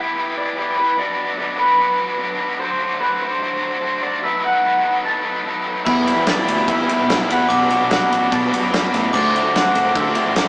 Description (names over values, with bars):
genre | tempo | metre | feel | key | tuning
indie rock | 147 BPM | 4/4 | straight | unclear | A4 = 439 Hz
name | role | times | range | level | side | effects
electric guitar through a small old amp | melody | 0.0-10.5 s | B4 to A5 | -20 LUFS | equal | none
bright tonewheel organ | sustained chords | 0.0-10.5 s | B4 to E6 | -32 LUFS | equal | none
overdriven electric guitar | riff | 0.0-10.5 s | B2 to C5 | -21 LUFS | left 1 dB | harmonic tremolo
glockenspiel with brass mallets | second line | 5.9-10.5 s | B5 to D6 | -23 LUFS | equal | slapback echo
crunchy overdriven guitar | riff | 5.9-10.5 s | E2 to F#4 | -21 LUFS | equal | none
fuzz fingered electric bass | bass | 5.9-10.5 s | A1 to E3 | -24 LUFS | equal | overdrive
loose indie drum kit | drums | 5.9-10.5 s | crash cymbal, kick drum, ride cymbal, snare drum | -21 LUFS | equal | none
room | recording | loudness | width
wet studio reverb, RT60 0.6 s | rough rehearsal-room recording, tube saturation, small speaker sound | -16 LUFS | side -28 dB against mid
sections
0.0-10.5 A section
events
none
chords
0.0 Em7; 1.0 Bm7; 2.6 D7; 4.2 B7sus4; 5.9 Em7; 7.5 Bm7; 9.1 D7